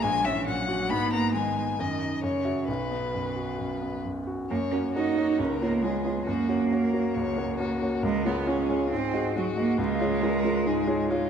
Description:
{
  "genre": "quick classical-period movement for piano trio",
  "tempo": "136 BPM",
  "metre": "4/4",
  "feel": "straight",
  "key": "B major, F# major from 4.5 s",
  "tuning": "A4 = 440 Hz",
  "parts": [
    { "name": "rich violin", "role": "melody", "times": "0.0-11.3 s", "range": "E#4 to B5", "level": "-32 LUFS", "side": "left 6 dB", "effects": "none" },
    { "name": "rich cello", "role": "second line", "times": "0.0-11.3 s", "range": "B2 to D#4", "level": "-28 LUFS", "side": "right 5 dB", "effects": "none" },
    { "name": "clear grand piano", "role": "accompaniment", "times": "0.0-11.3 s", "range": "A#1 to E5", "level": "-28 LUFS", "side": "left 1 dB", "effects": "none" }
  ],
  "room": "wet scoring stage reverb, RT60 1.7 s",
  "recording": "dark, warm production",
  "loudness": "-24 LUFS",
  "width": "side -7 dB against mid",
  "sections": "0.0-4.5 A section; 4.5-11.3 B section",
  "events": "none",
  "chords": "0.0 F#/A#; 0.9 G#m; 1.8 D#m/F#; 2.2 F#5; 2.7 B5; 4.5 F#; 5.4 C#7; 6.3 F#; 8.0 C#; 8.9 G#7; 9.8 C#"
}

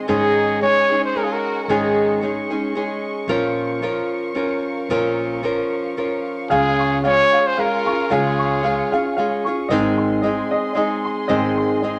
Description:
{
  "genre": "mexican folk, mariachi",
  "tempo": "112 BPM",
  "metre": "3/4",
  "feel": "swing 54% on 8ths",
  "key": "unclear",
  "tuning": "A4 = 440 Hz",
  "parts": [
    { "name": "nylon-string guitar", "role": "accompaniment", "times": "0.0-12.0 s", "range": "Ab2 to Bb4", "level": "-23 LUFS", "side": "equal", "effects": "none" },
    { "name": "muted studio violin section", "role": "sustained chords", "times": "0.0-12.0 s", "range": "Ab4 to Db6", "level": "-34 LUFS", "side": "equal", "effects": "none" },
    { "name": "mellow trumpet", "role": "melody", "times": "0.1-2.2, 6.5-9.2 s", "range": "Ab4 to Db5", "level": "-21 LUFS", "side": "equal", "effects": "none" },
    { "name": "warm symphonic violin section", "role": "second line", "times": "0.1-2.2, 6.5-9.2 s", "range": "Eb4 to Ab4", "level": "-33 LUFS", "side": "equal", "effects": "none" },
    { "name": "upright bass", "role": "bass", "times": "0.1-12.0 s", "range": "Ab1 to Db2", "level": "-33 LUFS", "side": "equal", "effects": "none" },
    { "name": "concert harp", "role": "arpeggios", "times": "6.5-12.0 s", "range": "Eb5 to Db6", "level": "-26 LUFS", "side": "equal", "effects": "none" }
  ],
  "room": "moderate studio reverb, RT60 0.6 s",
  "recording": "none",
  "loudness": "-20 LUFS",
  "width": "mono",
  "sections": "0.0-12.0 A section",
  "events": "none",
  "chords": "0.1 Absus4; 3.3 Bbm; 6.5 Db; 9.7 Ab"
}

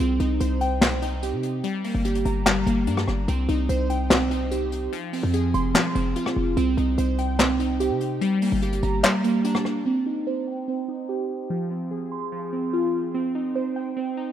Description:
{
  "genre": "hip hop, trap",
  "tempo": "146 BPM",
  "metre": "4/4",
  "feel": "half-time",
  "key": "C minor",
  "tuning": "A4 = 436 Hz",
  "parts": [
    { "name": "glassy digital keys", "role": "arpeggios", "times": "0.0-14.3 s", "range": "F3 to C6", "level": "-24 LUFS", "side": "right 1 dB", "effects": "chorus, low-pass filter, digital delay" },
    { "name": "hard-hitting 808-style bass", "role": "bass", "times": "0.0-9.0 s", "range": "F1 to C3", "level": "-25 LUFS", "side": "left 1 dB", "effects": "none" },
    { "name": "jazz brush drum kit", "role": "drums", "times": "0.2-9.7 s", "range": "handclaps, hi-hat, rim click, snare drum", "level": "-23 LUFS", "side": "left 1 dB", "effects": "none" }
  ],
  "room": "light reverb, small room ambience",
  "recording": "rough home demo mix",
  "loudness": "-22 LUFS",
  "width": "side -10 dB against mid",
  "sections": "0.0-9.9 A section; 9.9-14.3 B section",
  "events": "kick muted 9.0-9.9; filter sweep on synth keys 9.9-14.3",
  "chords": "0.0 Cm; 1.6 Gm; 3.3 Cm; 4.9 Fm; 6.6 Cm; 8.2 Gm; 9.9 Cm; 11.5 Fm; 13.1 Cm"
}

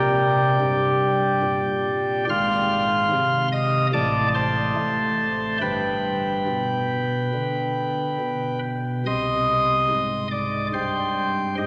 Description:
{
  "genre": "classical, chorale-style piece for pipe organ",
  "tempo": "71 BPM",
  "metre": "4/4",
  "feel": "rubato",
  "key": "unclear",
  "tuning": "A4 = 440 Hz",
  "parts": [
    { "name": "chamber organ, flutes", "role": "solo", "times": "0.0-11.7 s", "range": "G1 to F6", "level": "-22 LUFS", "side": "equal", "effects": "none" }
  ],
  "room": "wet cathedral reverb, RT60 5.1 s",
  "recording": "none",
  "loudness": "-23 LUFS",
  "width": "mono",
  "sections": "0.0-11.7 A section",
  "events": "none",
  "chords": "0.0 Gm; 2.3 Fm/Ab; 3.9 D5/A; 5.6 G; 9.1 Cm"
}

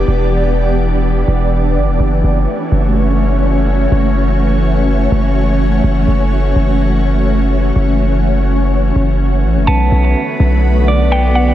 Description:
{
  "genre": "hip hop",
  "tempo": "125 BPM",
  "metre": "4/4",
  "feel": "half-time",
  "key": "unclear",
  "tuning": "A4 = 439 Hz",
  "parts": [
    { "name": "ethereal airy pad", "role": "sustained chords", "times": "0.0-11.5 s", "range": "D3 to D5", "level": "-16 LUFS", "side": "equal", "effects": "ensemble chorus, built-in reverb" },
    { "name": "long sustained 808-style bass", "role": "bass", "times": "0.0-11.5 s", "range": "E1 to B1", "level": "-13 LUFS", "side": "equal", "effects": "none" },
    { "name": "mallet-like synth pluck", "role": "melody", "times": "9.7-11.5 s", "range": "F#5 to A5", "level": "-20 LUFS", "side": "equal", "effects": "chorus, low-pass filter, digital delay" },
    { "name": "clean electric guitar", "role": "arpeggios", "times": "9.7-11.5 s", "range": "B3 to D5", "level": "-19 LUFS", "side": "right 4 dB", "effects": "low-pass filter, digital delay" }
  ],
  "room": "light reverb, digital ambience",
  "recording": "none",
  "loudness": "-11 LUFS",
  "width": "side -12 dB against mid",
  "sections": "0.0-9.7 A section; 9.7-11.5 B section",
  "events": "none",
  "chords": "0.0 Em7; 2.0 F#m7; 9.7 Bm7"
}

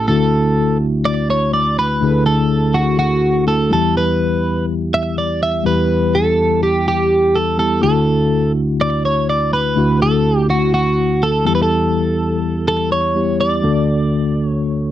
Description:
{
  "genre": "pop",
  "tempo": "124 BPM",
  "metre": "4/4",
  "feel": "swing 55% on 16ths",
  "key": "D major",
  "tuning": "A4 = 440 Hz",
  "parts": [
    { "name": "twelve-string electric guitar", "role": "melody", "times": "0.0-14.9 s", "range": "F#4 to E5", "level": "-17 LUFS", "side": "right 1 dB", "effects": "slapback echo" },
    { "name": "mellow tine electric piano", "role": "accompaniment", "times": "0.0-14.9 s", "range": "A1 to A4", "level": "-16 LUFS", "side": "left 1 dB", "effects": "slow stereo tremolo" }
  ],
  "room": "light reverb",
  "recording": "dry, close 1970s-style studio recording",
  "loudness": "-14 LUFS",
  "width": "side -12 dB against mid",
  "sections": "0.1-14.9 A section",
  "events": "none",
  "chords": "0.1 Dadd9; 3.7 Em; 7.8 Dadd9; 11.5 Em; 13.6 D"
}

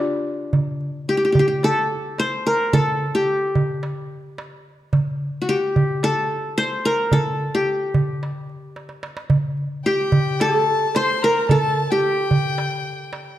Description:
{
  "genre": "Arabic maqam ensemble",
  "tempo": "110 BPM",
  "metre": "4/4",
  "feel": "straight",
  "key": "unclear",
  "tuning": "A4 = 440 Hz",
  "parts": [
    { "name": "qanun", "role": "melody", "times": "0.0-13.4 s", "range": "D4 to C5", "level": "-20 LUFS", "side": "left 1 dB", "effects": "none" },
    { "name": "darbuka", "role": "percussion", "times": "0.5-13.3 s", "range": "none", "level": "-22 LUFS", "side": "right 2 dB", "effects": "none" },
    { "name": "concert harp", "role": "second line", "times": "9.9-13.4 s", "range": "G4 to C5", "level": "-26 LUFS", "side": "right 5 dB", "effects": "none" },
    { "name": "rich violin", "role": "second line", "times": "9.9-13.4 s", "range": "G5 to C6", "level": "-25 LUFS", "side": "left 5 dB", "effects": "none" }
  ],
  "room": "wet recital hall reverb, RT60 1.6 s",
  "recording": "dark, warm production",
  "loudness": "-18 LUFS",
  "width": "side -13 dB against mid",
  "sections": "0.5-13.4 A section",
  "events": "drum fill 8.8-9.3",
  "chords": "none"
}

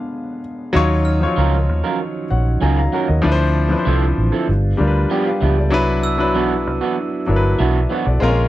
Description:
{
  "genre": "soul",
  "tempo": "96 BPM",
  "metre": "4/4",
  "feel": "straight",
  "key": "unclear",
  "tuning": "A4 = 440 Hz",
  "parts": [
    { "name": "warm concert grand piano", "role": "accompaniment", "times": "0.0-8.5 s", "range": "F3 to Bb5", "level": "-20 LUFS", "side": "left 3 dB", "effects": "none" },
    { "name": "percussive tonewheel organ", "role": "sustained chords", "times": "0.8-8.5 s", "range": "Db3 to F4", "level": "-26 LUFS", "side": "right 3 dB", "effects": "slow rotary speaker" },
    { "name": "vintage muted fingered electric bass", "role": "bass", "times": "0.8-8.5 s", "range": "G1 to Eb2", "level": "-17 LUFS", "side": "equal", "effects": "none" },
    { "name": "glockenspiel with brass mallets", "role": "texture", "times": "1.1-2.0, 6.0-7.0 s", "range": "E6 to F6", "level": "-30 LUFS", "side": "right 5 dB", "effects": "none" },
    { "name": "electric guitar through a small old amp", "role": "riff", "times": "1.4-8.1 s", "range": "E3 to Bb4", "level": "-22 LUFS", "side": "right 6 dB", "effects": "none" }
  ],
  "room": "small room reverb",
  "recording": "dry, close 1970s-style studio recording",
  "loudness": "-15 LUFS",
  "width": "side -15 dB against mid",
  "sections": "0.7-8.5 A section",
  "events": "stop 0.0-0.7",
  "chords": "0.0 Bb7b9 (rootless); 0.7 Ebm9; 3.2 Dm9; 4.5 G7; 5.7 Cmaj9#11"
}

